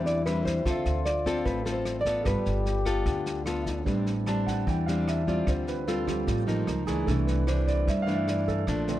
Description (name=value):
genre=bossa nova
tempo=150 BPM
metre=4/4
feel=straight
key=C major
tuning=A4 = 440 Hz
part: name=nylon-string guitar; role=melody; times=0.0-3.4 s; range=B4 to D5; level=-31 LUFS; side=equal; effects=none
part: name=breathy trombone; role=second line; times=0.0-3.8 s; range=E4 to G4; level=-34 LUFS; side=left 5 dB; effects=none
part: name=nylon-string guitar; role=accompaniment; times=0.0-9.0 s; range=G2 to A4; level=-29 LUFS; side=left 2 dB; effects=none
part: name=warm concert grand piano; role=accompaniment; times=0.0-9.0 s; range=D3 to A5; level=-32 LUFS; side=right 5 dB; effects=none
part: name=upright bass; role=bass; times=0.0-9.0 s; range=G1 to G2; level=-31 LUFS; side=equal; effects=none
part: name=vintage brush drum kit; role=drums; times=0.1-8.9 s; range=kick drum, rim click, snare drum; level=-34 LUFS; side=equal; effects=none
room=light reverb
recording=dark, warm production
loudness=-25 LUFS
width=side -13 dB against mid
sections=0.0-3.9 A section; 3.9-9.0 B section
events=grand piano solo 3.9-9.0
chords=0.0 Am11 (rootless); 0.7 Dm7; 2.3 G9; 3.9 Am11; 5.5 Dm7; 6.7 Db69; 7.1 C69